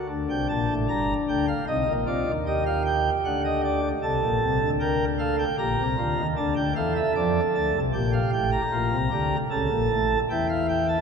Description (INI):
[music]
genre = classical, baroque-style 3-part fugue for pipe organ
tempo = 76 BPM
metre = 4/4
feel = straight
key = G minor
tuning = A4 = 438 Hz
[part]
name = pipe organ, sparkling flutes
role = solo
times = 0.0-11.0 s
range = G1 to Bb5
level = -22 LUFS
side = equal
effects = none
[sound]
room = wet cathedral reverb, RT60 4.9 s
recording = minimal, uncompressed stereo recording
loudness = -22 LUFS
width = side -6 dB against mid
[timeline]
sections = 0.1-11.0 A section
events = none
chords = 0.1 Gm; 1.7 Cm; 3.2 D; 4.8 Gm/D; 6.4 Dm; 7.9 Gm; 9.5 A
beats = | 0.10 0.89 1.68 2.46 | 3.24 4.02 4.80 5.58 | 6.37 7.16 7.94 8.73 | 9.51 10.30